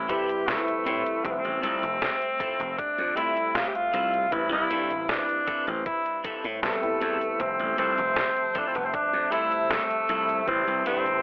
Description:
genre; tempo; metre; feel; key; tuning
vaporwave; 78 BPM; 4/4; straight; unclear; A4 = 440 Hz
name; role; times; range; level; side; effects
clear tenor saxophone; melody; 0.0-11.2 s; A3 to G4; -26 LUFS; equal; vintage 12-bit sampler grit, tape echo
warbly lo-fi synth keys; accompaniment; 0.0-11.2 s; G3 to E5; -32 LUFS; equal; wide subtle chorus, tape echo
slap bass; bass; 0.0-11.2 s; F1 to A2; -30 LUFS; equal; tube saturation
electric guitar at the edge of break-up; riff; 0.1-11.1 s; C4 to C5; -36 LUFS; equal; lush chorus, vintage 12-bit sampler grit, tape echo
detuned 8-bit digital drum machine; drums; 0.1-11.2 s; cabasa, hi-hat, snare drum; -30 LUFS; equal; none
electronic kick drum; drums; 0.1-10.6 s; none; -38 LUFS; equal; none
warbly tape-like pad; sustained chords; 8.3-11.2 s; F3 to A5; -37 LUFS; equal; chorus, built-in reverb, phaser
room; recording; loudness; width
light reverb, digital ambience; dry, gritty hardware recording, cassette tape, telephone sound; -23 LUFS; side -26 dB against mid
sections
0.0-11.2 A section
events
none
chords
0.0 Am7; 1.2 Fmaj7; 4.3 Am7; 7.4 Fmaj7; 10.5 Am7

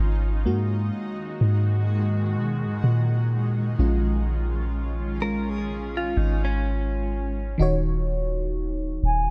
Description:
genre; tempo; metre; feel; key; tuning
R&B; 63 BPM; 4/4; swing 58% on 16ths; unclear; A4 = 438 Hz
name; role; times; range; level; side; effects
granular cloud pad; sustained chords; 0.0-7.6 s; D#3 to F#4; -35 LUFS; equal; built-in reverb
soft 808-style bass; bass; 0.0-9.3 s; D#1 to B2; -26 LUFS; equal; none
mellow FM electric piano; accompaniment; 0.5-9.3 s; D#3 to C#5; -32 LUFS; equal; chorus, phaser
direct-recorded clean electric guitar; arpeggios; 5.2-7.6 s; C#4 to A#4; -34 LUFS; equal; lush chorus, delay
hollow clarinet-like synth lead; melody; 9.0-9.3 s; G#5; -25 LUFS; equal; chorus, phaser
room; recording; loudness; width
digital ambience; dark, warm production; -25 LUFS; mono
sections
0.0-7.6 A section; 7.6-9.3 B section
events
FM electric piano solo 0.0-7.6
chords
0.0 G#7sus2; 3.3 D#9sus4/A#; 7.6 D#m7

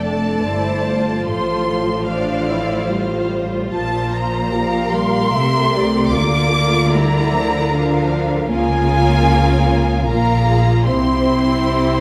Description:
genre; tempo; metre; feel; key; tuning
classical, slow romantic movement for string orchestra; 75 BPM; 3/4; rubato; unclear; A4 = 439 Hz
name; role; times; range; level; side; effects
rich studio violin section; melody; 0.0-12.0 s; F5 to D6; -24 LUFS; equal; none
rich studio violin section; second line; 0.0-12.0 s; G4 to F5; -26 LUFS; equal; none
rich studio viola section; accompaniment; 0.0-12.0 s; F3 to G4; -22 LUFS; equal; none
rich studio cello section; bass; 0.0-12.0 s; F2 to D3; -25 LUFS; equal; none
rich studio double bass section; bass; 0.0-12.0 s; F1 to D2; -23 LUFS; equal; none
room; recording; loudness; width
wet recital hall reverb, RT60 1.6 s; none; -17 LUFS; mono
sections
0.0-12.0 A section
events
none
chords
0.0 F; 1.3 F/A; 3.7 Bb5; 6.2 Bb/D; 8.5 Bbm/Db; 10.9 C

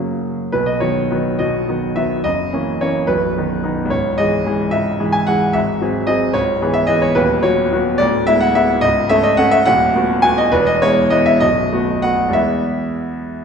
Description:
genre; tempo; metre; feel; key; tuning
classical, romantic character piece for solo piano; 62-75 BPM (dotted quarters); 6/8; rubato; B major, E major from 7.2 s; A4 = 437 Hz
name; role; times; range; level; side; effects
clear grand piano; solo; 0.0-13.4 s; B0 to G#5; -14 LUFS; equal; none
room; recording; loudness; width
wet concert hall reverb, RT60 1.8 s; minimal, uncompressed stereo recording; -14 LUFS; side -6 dB against mid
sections
0.5-13.4 A section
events
none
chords
0.0 F#; 0.5 B; 2.2 F#7; 3.1 B; 3.9 C#m; 5.5 G#7; 6.4 C#m7; 7.2 B/D#; 8.0 E7/D; 8.8 A/C#; 9.7 B7/D#; 10.5 E; 11.4 B7; 12.3 E

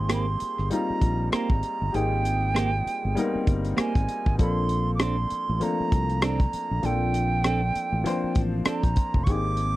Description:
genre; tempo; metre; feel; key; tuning
lush 1970s-style soul; 98 BPM; 4/4; swing 58% on 16ths; Bb major; A4 = 440 Hz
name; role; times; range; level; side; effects
silver concert flute; melody; 0.0-9.8 s; G5 to D6; -29 LUFS; right 4 dB; none
clear baby grand piano; accompaniment; 0.0-9.8 s; F3 to C5; -29 LUFS; left 3 dB; none
fingered electric bass; bass; 0.0-9.8 s; F1 to C2; -27 LUFS; equal; none
clean electric guitar; riff; 0.1-8.8 s; Bb3 to A4; -28 LUFS; right 4 dB; warbly pitch drift
warm soul drum kit; drums; 0.1-9.7 s; hi-hat, kick drum, rim click; -24 LUFS; equal; none
room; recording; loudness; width
little or no reverb; dry, close 1970s-style studio recording; -22 LUFS; side -16 dB against mid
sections
0.0-9.8 A section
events
none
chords
0.0 Abmaj9; 4.4 Bbmaj9

